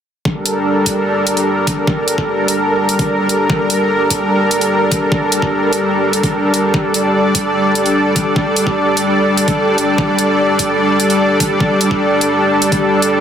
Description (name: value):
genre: heavy wobble dubstep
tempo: 148 BPM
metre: 4/4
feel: half-time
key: G minor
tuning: A4 = 439 Hz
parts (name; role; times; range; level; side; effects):
- supersaw pad; sustained chords; 0.3-13.2 s; G3 to D5; -13 LUFS; equal; sidechain pumping
- electronic kick drum; drums; 0.3-12.8 s; none; -18 LUFS; equal; overdrive, high-pass filter on kick, high-pass filter on room
- electronic hi-hat; drums; 0.5-13.1 s; none; -18 LUFS; right 1 dB; overdrive
room: moderate digital room reverb, RT60 1.1 s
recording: dense, heavily limited modern master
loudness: -12 LUFS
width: side -8 dB against mid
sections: 0.3-13.2 A section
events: kick drops out 12.8-13.2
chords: 0.3 Gmadd9